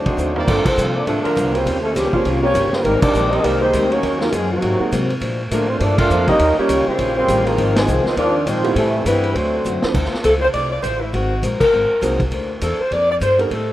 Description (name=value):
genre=jazz, big band swing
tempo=202 BPM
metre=4/4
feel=swing 60% on 8ths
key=G minor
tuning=A4 = 439 Hz
part: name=clear saxophone section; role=melody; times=0.0-13.7 s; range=Eb3 to F5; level=-19 LUFS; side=left 1 dB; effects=none
part: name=bright trombone section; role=second line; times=0.0-9.8 s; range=Bb2 to F4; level=-22 LUFS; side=right 2 dB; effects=none
part: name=picked steel-string acoustic guitar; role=accompaniment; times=0.0-13.7 s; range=G2 to C5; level=-26 LUFS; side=left 3 dB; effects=none
part: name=upright bass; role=bass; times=0.0-13.7 s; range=G1 to C3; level=-23 LUFS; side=equal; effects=none
part: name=vintage drum kit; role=drums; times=0.1-13.6 s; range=crash cymbal, hi-hat, kick drum, ride cymbal, snare drum, toms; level=-24 LUFS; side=equal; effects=none
part: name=warm concert grand piano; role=accompaniment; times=0.4-9.9, 12.0-13.5 s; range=G2 to Bb4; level=-26 LUFS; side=right 4 dB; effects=none
part: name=warm trumpet section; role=stabs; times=0.4-0.8 s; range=G3 to D5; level=-28 LUFS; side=right 2 dB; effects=none
room=light reverb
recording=rough home demo mix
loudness=-15 LUFS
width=side -14 dB against mid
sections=0.5-9.9 A section; 9.9-13.7 B section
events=band accent 0.0, 0.6, 3.0, 6.0, 7.7, 11.6; drum fill 0.2, 9.7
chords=0.5 Gm11; 1.7 Eb13; 2.8 Abmaj9; 4.0 Ebm7; 4.6 Ab9; 5.2 Bbmaj7; 6.4 Eb9; 7.6 Ab69; 8.8 Am9; 9.4 D7; 9.9 Dm7; 11.1 G#9; 12.3 Bbmaj9